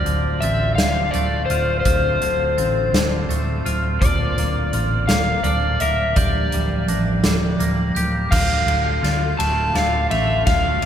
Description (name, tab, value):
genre	post-rock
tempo	56 BPM (dotted quarters)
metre	6/8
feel	straight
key	D minor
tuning	A4 = 440 Hz
part	overdriven slide guitar	melody	0.0-10.9 s	C5 to A5	-22 LUFS	left 3 dB	none
part	muted chamber string section	sustained chords	0.0-10.9 s	D3 to F4	-29 LUFS	right 2 dB	none
part	glockenspiel with soft plastic mallets	arpeggios	0.0-10.9 s	D6 to F7	-28 LUFS	right 5 dB	none
part	twangy electric guitar	arpeggios	0.0-10.9 s	D2 to Bb4	-28 LUFS	left 2 dB	spring reverb
part	hollow-body short-scale fingered electric bass	bass	0.0-10.9 s	D1 to D2	-22 LUFS	equal	none
part	huge arena drum kit	drums	0.1-10.9 s	crash cymbal, hi-hat, kick drum, ride cymbal, snare drum	-24 LUFS	right 1 dB	none
room	wet cathedral reverb, RT60 5.1 s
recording	recorded in a church or concert hall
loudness	-17 LUFS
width	side -9 dB against mid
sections	0.0-8.3 A section; 8.3-10.9 B section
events	build-up 8.3-10.9; drum fill 8.3-10.9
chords	0.0 Dm7; 4.0 Bbadd9/D; 6.2 Gm7/D; 8.3 Dm